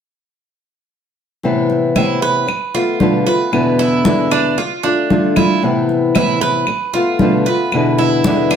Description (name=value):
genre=latin, Cuban son and guajira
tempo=114 BPM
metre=4/4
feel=straight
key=A harmonic minor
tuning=A4 = 440 Hz
part: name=fingerpicked old ladder-braced acoustic guitar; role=accompaniment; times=1.4-8.6 s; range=E2 to F4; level=-15 LUFS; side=left 1 dB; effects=none
part: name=congas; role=percussion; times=1.4-8.6 s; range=none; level=-19 LUFS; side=equal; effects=none
part: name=Cuban tres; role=arpeggios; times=2.0-8.6 s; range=D4 to B4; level=-19 LUFS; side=right 6 dB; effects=none
part: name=claves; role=percussion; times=2.0-8.6 s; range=none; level=-25 LUFS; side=left 2 dB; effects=none
room=wet studio reverb, RT60 0.7 s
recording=heard from further back in the room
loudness=-13 LUFS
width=side -8 dB against mid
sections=1.4-8.6 A section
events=none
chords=1.4 Amadd9; 2.5 Bm7b5; 3.5 E7; 4.6 Dm; 5.6 Amadd9; 6.7 Bm7b5; 7.7 E7